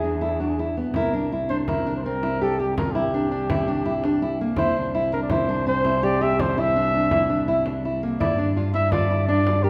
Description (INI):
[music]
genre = contemporary instrumental, chamber music in an uneven meter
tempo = 166 BPM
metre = 5/4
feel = straight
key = unclear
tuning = A4 = 441 Hz
[part]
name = warm flugelhorn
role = melody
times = 0.0-9.7 s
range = F#4 to E5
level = -28 LUFS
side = equal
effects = none
[part]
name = nylon-string guitar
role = arpeggios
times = 0.0-9.7 s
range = Bb3 to G4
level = -26 LUFS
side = equal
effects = none
[part]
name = dark cello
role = bass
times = 0.0-9.7 s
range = C2 to G2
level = -29 LUFS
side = equal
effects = none
[part]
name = frame drum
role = percussion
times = 0.9-9.6 s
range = none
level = -33 LUFS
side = equal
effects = none
[sound]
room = wet recital hall reverb, RT60 1.6 s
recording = recorded in a church or concert hall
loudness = -23 LUFS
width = mono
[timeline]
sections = 0.9-9.7 A section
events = none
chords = 0.0 E7; 0.9 C; 8.2 G5